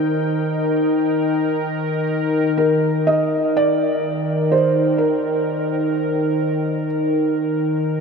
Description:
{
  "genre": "ambient",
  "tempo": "62 BPM",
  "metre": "3/4",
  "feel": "straight",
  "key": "Eb major",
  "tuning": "A4 = 440 Hz",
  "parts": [
    { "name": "felt-muted upright piano", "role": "melody", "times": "0.0-6.9 s", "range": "Bb4 to Eb5", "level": "-22 LUFS", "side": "right 1 dB", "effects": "diffuse ambient delay" },
    { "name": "evolving wavetable pad", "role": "sustained chords", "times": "0.0-8.0 s", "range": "Eb3 to G5", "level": "-18 LUFS", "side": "equal", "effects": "chorus, built-in reverb" }
  ],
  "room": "wet huge ambient reverb, RT60 7.9 s",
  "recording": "none",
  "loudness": "-17 LUFS",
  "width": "side -5 dB against mid",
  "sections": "0.0-2.6 A section; 2.6-8.0 B section",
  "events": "none",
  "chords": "0.0 Eb",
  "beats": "0.60 1.57 | 2.55 3.53 4.50 | 5.46 6.41 7.37"
}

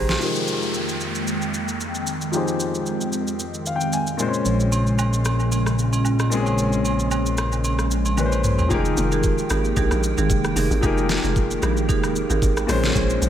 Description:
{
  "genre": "amapiano",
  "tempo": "113 BPM",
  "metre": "4/4",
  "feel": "swing 55% on 16ths",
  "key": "unclear",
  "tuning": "A4 = 438 Hz",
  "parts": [
    { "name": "clear grand piano", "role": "accompaniment", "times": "0.0-13.3 s", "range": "Bb2 to C6", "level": "-26 LUFS", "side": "left 5 dB", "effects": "low-pass filter" },
    { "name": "hollow soft pad", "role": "sustained chords", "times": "0.0-13.3 s", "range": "F2 to G5", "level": "-26 LUFS", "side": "right 1 dB", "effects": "ensemble chorus, low-pass filter" },
    { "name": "marimba with hard mallets", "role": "stabs", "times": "0.0-0.1, 8.7-13.1 s", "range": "Db4 to C5", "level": "-26 LUFS", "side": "right 6 dB", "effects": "dub echo" },
    { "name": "hollow log drum bass", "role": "bass", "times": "0.0-0.2, 8.7-13.3 s", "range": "F1 to Bb1", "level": "-24 LUFS", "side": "equal", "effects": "none" },
    { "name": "smooth R&B drum kit", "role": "drums", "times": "0.1-13.3 s", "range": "hi-hat, kick drum, rim click, shaker, snare drum, toms", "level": "-26 LUFS", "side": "equal", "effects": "none" },
    { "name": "agogo bells and woodblock", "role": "percussion", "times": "0.1-0.2, 4.7-8.7 s", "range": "none", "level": "-31 LUFS", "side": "right 4 dB", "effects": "dub echo" },
    { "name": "downlifter", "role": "sound effects", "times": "0.2-4.5 s", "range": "none", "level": "-31 LUFS", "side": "equal", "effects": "none" },
    { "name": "fat analog bass", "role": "bass", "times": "4.5-8.7 s", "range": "Bb1", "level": "-22 LUFS", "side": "equal", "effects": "none" }
  ],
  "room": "light reverb, digital ambience",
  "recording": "echo-heavy mix",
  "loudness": "-19 LUFS",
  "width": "side -10 dB against mid",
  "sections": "0.2-8.7 A section; 8.7-13.3 B section",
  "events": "grand piano fill 0.0, 3.4-4.5; filter sweep 0.2-8.7; drum fill 8.2-8.7; drop 8.7-13.3",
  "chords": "0.2 Fm11; 4.2 Bbm9; 8.7 Fm11; 12.7 Bbm9",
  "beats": "| 0.21 0.74 1.27 1.80 | 2.33 2.86 3.40 3.93 | 4.46 4.99 5.52 6.05 | 6.58 7.11 7.64 8.17 | 8.71 9.24 9.77 10.30 | 10.83 11.36 11.89 12.42 | 12.95"
}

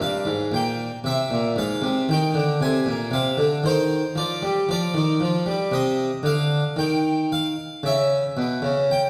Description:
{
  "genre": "classical, baroque-style suite movement for harpsichord",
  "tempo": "57 BPM",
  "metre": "4/4",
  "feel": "rubato",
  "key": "unclear",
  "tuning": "A4 = 440 Hz",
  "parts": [
    { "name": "harpsichord", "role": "solo", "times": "0.0-9.1 s", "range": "G2 to Ab5", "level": "-23 LUFS", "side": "equal", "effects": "none" }
  ],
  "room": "wet recital hall reverb, RT60 1.5 s",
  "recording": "recorded in a church or concert hall",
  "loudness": "-23 LUFS",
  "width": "mono",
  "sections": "0.0-9.1 A section",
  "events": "none",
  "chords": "0.0 C5; 1.6 Fm/Ab; 5.7 Cm; 7.8 Em6",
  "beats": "0.53 | 1.57 2.60 3.64 4.68 | 5.72 6.77 7.83 8.89"
}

